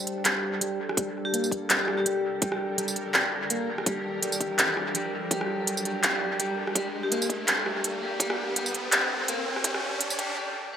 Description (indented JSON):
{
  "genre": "half-time drum and bass",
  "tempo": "166 BPM",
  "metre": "4/4",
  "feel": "swing 55% on 16ths, half-time",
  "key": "G minor",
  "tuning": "A4 = 438 Hz",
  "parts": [
    { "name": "bowed-like drone", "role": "sustained chords", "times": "0.0-10.4 s", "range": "G3 to C5", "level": "-36 LUFS", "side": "right 1 dB", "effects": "built-in reverb, phaser, sidechain pumping" },
    { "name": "clean electric guitar", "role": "arpeggios", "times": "0.0-10.8 s", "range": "G3 to Bb3", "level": "-32 LUFS", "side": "equal", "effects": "low-pass filter, dub echo" },
    { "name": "riser", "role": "sound effects", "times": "1.5-10.4 s", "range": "none", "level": "-35 LUFS", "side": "right 1 dB", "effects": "none" },
    { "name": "organic electronic drum kit", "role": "drums", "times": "0.1-10.3 s", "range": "handclaps, hi-hat, rim click, tambourine", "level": "-26 LUFS", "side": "equal", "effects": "overdrive, dub echo" },
    { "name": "electronic kick drum", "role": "drums", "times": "1.0-10.3 s", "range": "none", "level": "-29 LUFS", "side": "equal", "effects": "high-pass filter on kick" },
    { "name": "vibraphone with hard mallets", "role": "melody", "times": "1.2-2.1, 7.0-7.2 s", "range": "G4", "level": "-33 LUFS", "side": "left 4 dB", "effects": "dub echo" }
  ],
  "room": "moderate echo chamber reverb, RT60 1.6 s, digital ambience",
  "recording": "echo-heavy mix, high-pass filter",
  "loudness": "-24 LUFS",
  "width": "side -8 dB against mid",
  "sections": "0.0-10.8 A section",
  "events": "build-up 0.0-10.8; filter sweep on clean electric guitar 0.0-10.8; riser 1.5-10.4; break 10.4-10.8",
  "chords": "0.0 Gmadd9"
}